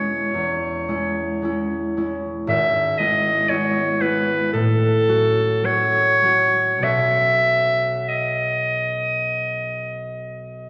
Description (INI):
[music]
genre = classical, romantic duo for clarinet and harp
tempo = 47-60 BPM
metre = 4/4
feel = rubato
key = unclear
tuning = A4 = 444 Hz
[part]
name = bright clarinet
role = melody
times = 0.0-10.7 s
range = A4 to E5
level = -22 LUFS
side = equal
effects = none
[part]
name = concert harp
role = accompaniment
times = 0.0-10.7 s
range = E1 to F#4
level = -26 LUFS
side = equal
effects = none
[sound]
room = wet recital hall reverb, RT60 1.8 s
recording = none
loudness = -20 LUFS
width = mono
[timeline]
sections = 0.0-10.7 A section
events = none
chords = 0.0 C#m/E; 2.5 E/G#; 4.5 F#m7/A; 6.8 B